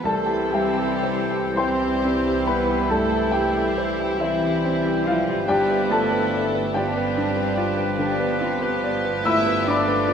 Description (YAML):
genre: classical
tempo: 37-49 BPM (dotted quarters)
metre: 12/8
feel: rubato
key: C major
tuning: A4 = 440 Hz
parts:
  - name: clear baby grand piano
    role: melody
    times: 0.0-10.1 s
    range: C2 to E6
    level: -24 LUFS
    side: left 1 dB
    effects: none
  - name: warm studio violin section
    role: melody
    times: 0.0-10.1 s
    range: D4 to A4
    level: -32 LUFS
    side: left 5 dB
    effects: none
  - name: dark studio violin section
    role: second line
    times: 0.0-10.1 s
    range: E4 to E5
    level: -32 LUFS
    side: left 3 dB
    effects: none
  - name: mellow hollow silver concert flute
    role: second line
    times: 0.0-10.1 s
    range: E5 to E6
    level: -32 LUFS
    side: left 3 dB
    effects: none
  - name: warm clarinet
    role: second line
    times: 0.0-10.1 s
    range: E4 to E5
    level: -33 LUFS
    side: left 3 dB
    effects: none
  - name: rich studio viola section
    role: accompaniment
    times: 0.0-10.1 s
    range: G3 to E4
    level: -28 LUFS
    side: right 3 dB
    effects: none
  - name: warm bassoon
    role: accompaniment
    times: 0.0-10.1 s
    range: E3 to F3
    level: -31 LUFS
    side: right 3 dB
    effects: none
  - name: dark French horn section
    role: sustained chords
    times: 0.0-10.1 s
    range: E3 to E4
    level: -30 LUFS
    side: left 4 dB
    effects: none
  - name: warm studio cello section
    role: bass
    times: 0.0-10.1 s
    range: E3 to E4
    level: -31 LUFS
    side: right 3 dB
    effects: none
  - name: warm studio double bass section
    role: bass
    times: 0.0-10.1 s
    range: G1 to C2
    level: -33 LUFS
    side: right 5 dB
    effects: none
  - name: clear oboe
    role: second line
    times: 0.1-10.1 s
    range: B4 to C5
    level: -31 LUFS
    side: right 1 dB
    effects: none
room: wet scoring stage reverb, RT60 1.9 s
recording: none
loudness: -19 LUFS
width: side -7 dB against mid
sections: 0.0-10.1 A section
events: none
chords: 0.0 C; 5.5 G7